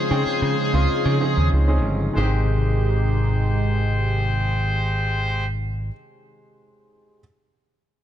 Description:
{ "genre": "pop", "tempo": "95 BPM", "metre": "4/4", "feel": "straight", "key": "Ab major", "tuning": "A4 = 440 Hz", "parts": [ { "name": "high-gain lead guitar", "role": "melody", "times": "0.0-1.5 s", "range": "Ab4", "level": "-25 LUFS", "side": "left 4 dB", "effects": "distortion, ping-pong delay" }, { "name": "clear baby grand piano", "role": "accompaniment", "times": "0.0-7.2 s", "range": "Ab3 to G5", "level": "-28 LUFS", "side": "right 1 dB", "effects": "none" }, { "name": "phased analog pad", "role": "sustained chords", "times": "0.0-5.4 s", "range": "C3 to C5", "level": "-27 LUFS", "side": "right 2 dB", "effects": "phaser, chorus" }, { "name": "bright horn section", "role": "stabs", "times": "0.0-5.4 s", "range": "Ab3 to C5", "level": "-28 LUFS", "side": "left 2 dB", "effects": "none" }, { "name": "modern bright picked electric bass", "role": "bass", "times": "0.1-5.9 s", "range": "G1 to Db3", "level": "-21 LUFS", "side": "equal", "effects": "none" } ], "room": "light reverb, small room ambience", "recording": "none", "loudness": "-19 LUFS", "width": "side -11 dB against mid", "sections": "0.0-2.2 A section; 2.2-4.7 B section", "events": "none", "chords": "0.0 Dbmaj9; 2.2 Abmaj7" }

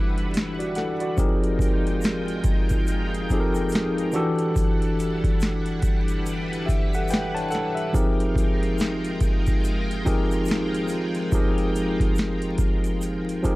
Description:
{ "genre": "lo-fi hip hop", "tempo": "71 BPM", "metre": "4/4", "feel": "swing 60% on 16ths", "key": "F dorian", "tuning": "A4 = 441 Hz", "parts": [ { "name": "tine electric piano", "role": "accompaniment", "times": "0.0-13.6 s", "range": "E3 to A5", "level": "-25 LUFS", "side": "equal", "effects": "medium stereo tremolo" }, { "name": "string machine, full ensemble", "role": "sustained chords", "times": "0.0-13.6 s", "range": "G3 to G5", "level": "-32 LUFS", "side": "equal", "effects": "ensemble chorus" }, { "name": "booming analog drum machine", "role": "drums", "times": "0.2-13.6 s", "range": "hi-hat, kick drum, snare drum", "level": "-24 LUFS", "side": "equal", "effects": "overdrive" }, { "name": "egg shaker", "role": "percussion", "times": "1.2-13.6 s", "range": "none", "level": "-45 LUFS", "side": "right 5 dB", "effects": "none" } ], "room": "light reverb", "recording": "vinyl crackle", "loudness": "-21 LUFS", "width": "side -20 dB against mid", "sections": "0.0-13.6 A section", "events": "none", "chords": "0.0 Em11; 1.2 Fm11; 4.1 Em11; 7.9 Fm11" }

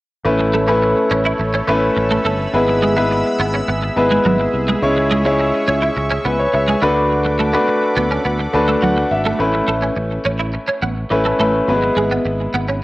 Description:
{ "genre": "pop", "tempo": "105 BPM", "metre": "4/4", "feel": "straight", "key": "A major", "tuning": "A4 = 439 Hz", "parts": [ { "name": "clear grand piano", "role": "accompaniment", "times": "0.2-12.8 s", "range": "F#3 to A5", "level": "-16 LUFS", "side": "left 1 dB", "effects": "cassette tape" }, { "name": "sweeping resonant pad", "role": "sustained chords", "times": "0.3-9.4 s", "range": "G#4 to E6", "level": "-25 LUFS", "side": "right 1 dB", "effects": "chorus, cassette tape" }, { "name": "sustaining fretless electric bass", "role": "bass", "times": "0.3-12.8 s", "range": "G1 to D2", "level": "-22 LUFS", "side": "equal", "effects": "none" }, { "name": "twelve-string electric guitar", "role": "riff", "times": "0.4-12.8 s", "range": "F#3 to E4", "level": "-22 LUFS", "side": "right 2 dB", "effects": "ensemble chorus, cassette tape, tape echo" } ], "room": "moderate spring reverb, RT60 1.3 s", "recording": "home recording on cassette", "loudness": "-14 LUFS", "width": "side -19 dB against mid", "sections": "0.3-9.4 A section; 9.4-12.8 B section", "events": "grand piano fill 8.3-9.4", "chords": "0.3 Aadd9; 2.5 E/G#; 4.8 C#m; 6.8 D6; 9.4 Aadd9; 11.7 E/G#" }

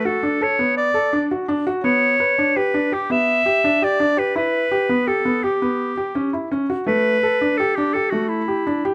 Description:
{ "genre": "contemporary instrumental, contemporary", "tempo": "167 BPM", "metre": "7/4", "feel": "straight", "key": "A mixolydian", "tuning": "A4 = 439 Hz", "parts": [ { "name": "bright clarinet", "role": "melody", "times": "0.0-8.9 s", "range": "E4 to E5", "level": "-21 LUFS", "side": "equal", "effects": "none" }, { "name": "felt-muted upright piano", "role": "arpeggios", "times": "0.1-8.9 s", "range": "A3 to B4", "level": "-24 LUFS", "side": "equal", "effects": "none" } ], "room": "light reverb", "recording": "close, detailed microphones", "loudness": "-19 LUFS", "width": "mono", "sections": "0.0-8.9 A section", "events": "none", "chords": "0.0 Bm7; 1.8 Em7; 4.4 C#m7b5; 6.9 A7sus4" }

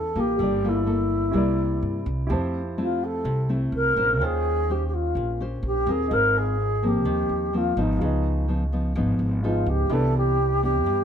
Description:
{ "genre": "bossa nova", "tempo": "126 BPM", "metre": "4/4", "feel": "straight", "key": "unclear", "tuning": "A4 = 441 Hz", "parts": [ { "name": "reedy wooden-headed alto flute", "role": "melody", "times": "0.0-11.0 s", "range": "Eb4 to Bb4", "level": "-24 LUFS", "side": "equal", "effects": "plate reverb" }, { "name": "nylon-string guitar", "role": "accompaniment", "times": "0.0-11.0 s", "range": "G2 to C5", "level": "-27 LUFS", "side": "left 1 dB", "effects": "none" }, { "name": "warm baby grand piano", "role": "accompaniment", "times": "0.0-11.0 s", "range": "Db4 to A5", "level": "-34 LUFS", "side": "right 4 dB", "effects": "none" }, { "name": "upright bass", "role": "bass", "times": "0.0-11.0 s", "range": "G1 to G2", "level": "-26 LUFS", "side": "equal", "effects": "none" } ], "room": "light reverb", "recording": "none", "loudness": "-21 LUFS", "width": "side -8 dB against mid", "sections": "0.0-6.1 A section; 6.1-11.0 B section", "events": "none", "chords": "0.4 Gm9; 1.4 C7; 2.3 Fmaj7; 4.2 Eb13; 6.1 Ab69; 8.0 Db9; 9.9 Cmaj9" }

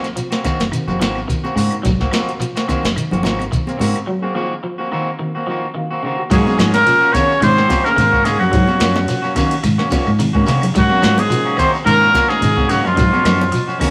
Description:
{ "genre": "afrobeat", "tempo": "108 BPM", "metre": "4/4", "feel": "swing 54% on 16ths", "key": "Ab mixolydian", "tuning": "A4 = 445 Hz", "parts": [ { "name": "electric guitar at the edge of break-up", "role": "arpeggios", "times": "0.0-13.9 s", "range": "Db3 to Gb3", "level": "-26 LUFS", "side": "equal", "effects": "none" }, { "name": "electric guitar at the edge of break-up", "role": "stabs", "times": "0.0-13.9 s", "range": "Eb3 to Gb4", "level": "-25 LUFS", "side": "equal", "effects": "none" }, { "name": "soft vintage rhythm box", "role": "drums", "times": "0.0-13.9 s", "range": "hi-hat, kick drum, ride cymbal, snare drum", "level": "-24 LUFS", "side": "equal", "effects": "none" }, { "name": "shekere", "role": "percussion", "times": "0.0-13.9 s", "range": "none", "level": "-30 LUFS", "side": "equal", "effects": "none" }, { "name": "reed electric piano", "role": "accompaniment", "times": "0.3-13.9 s", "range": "Bb3 to Ab5", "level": "-31 LUFS", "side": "equal", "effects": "none" }, { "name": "deep dub fingered electric bass", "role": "bass", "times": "0.4-13.5 s", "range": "Gb1 to C3", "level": "-22 LUFS", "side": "equal", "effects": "none" }, { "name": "claves", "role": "percussion", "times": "0.5-13.9 s", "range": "none", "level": "-39 LUFS", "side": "equal", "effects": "none" }, { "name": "congas", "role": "percussion", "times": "0.5-13.9 s", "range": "none", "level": "-26 LUFS", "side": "equal", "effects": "none" }, { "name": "clear trumpet", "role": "melody", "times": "6.3-13.9 s", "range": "F4 to Db5", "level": "-18 LUFS", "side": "equal", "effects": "tape echo" }, { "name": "breathy trombone", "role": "second line", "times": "6.3-13.9 s", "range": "F3 to Db4", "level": "-28 LUFS", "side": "equal", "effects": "none" }, { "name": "raspy baritone saxophone", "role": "second line", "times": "6.3-13.9 s", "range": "F2 to Db3", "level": "-30 LUFS", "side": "equal", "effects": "none" } ], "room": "wet stone room reverb, RT60 1.2 s", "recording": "rough rehearsal-room recording", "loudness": "-16 LUFS", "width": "mono", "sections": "0.0-6.3 A section; 6.3-13.9 B section", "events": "break 4.1-6.3; reed electric piano fill 5.2-6.3, 13.5-13.9", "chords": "0.0 Ab9" }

